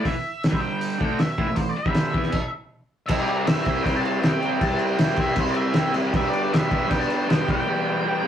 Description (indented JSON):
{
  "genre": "garage rock duo or trio",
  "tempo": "158 BPM",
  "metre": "4/4",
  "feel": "straight",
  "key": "unclear",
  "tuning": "A4 = 440 Hz",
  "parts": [
    { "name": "octave-fuzz lead guitar", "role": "melody", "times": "0.0-8.3 s", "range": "C5 to A5", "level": "-28 LUFS", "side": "equal", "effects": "distortion" },
    { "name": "raw garage guitar", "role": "riff", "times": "0.0-8.3 s", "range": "E2 to G4", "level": "-24 LUFS", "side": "equal", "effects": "overdrive" },
    { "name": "cloth-damped thuddy drum kit", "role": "drums", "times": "0.1-7.6 s", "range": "crash cymbal, hi-hat, kick drum, snare drum", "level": "-24 LUFS", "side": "equal", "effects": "none" }
  ],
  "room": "moderate studio reverb, RT60 0.5 s",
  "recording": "rough rehearsal-room recording",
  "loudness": "-20 LUFS",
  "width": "side -9 dB against mid",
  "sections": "0.0-3.1 A section; 3.1-8.3 B section",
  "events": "stop 2.3-3.1",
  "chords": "0.0 A5; 0.5 G5; 1.0 A5; 2.1 E5; 2.5 N.C.; 3.1 C; 6.1 G; 7.5 Em"
}